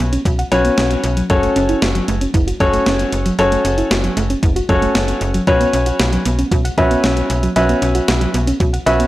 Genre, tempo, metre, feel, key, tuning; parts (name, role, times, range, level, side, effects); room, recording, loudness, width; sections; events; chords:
synth-pop; 115 BPM; 4/4; straight; A4 = 436 Hz
clear baby grand piano; accompaniment; 0.0-9.1 s; C#4 to E5; -17 LUFS; left 1 dB
soft round pluck; arpeggios; 0.0-9.1 s; F#3 to F#5; -21 LUFS; right 2 dB; chorus, analog delay
slap-like FM bass; bass; 0.0-9.0 s; F#1 to B1; -19 LUFS; equal; transformer saturation
clean 12-bit digital drum machine; drums; 0.0-9.1 s; hi-hat, kick drum, snare drum; -20 LUFS; equal
light reverb; dry, gritty hardware recording; -13 LUFS; side -16 dB against mid
0.0-9.1 A section
0.0 Bsus2; 1.3 F#m7; 5.5 Bsus2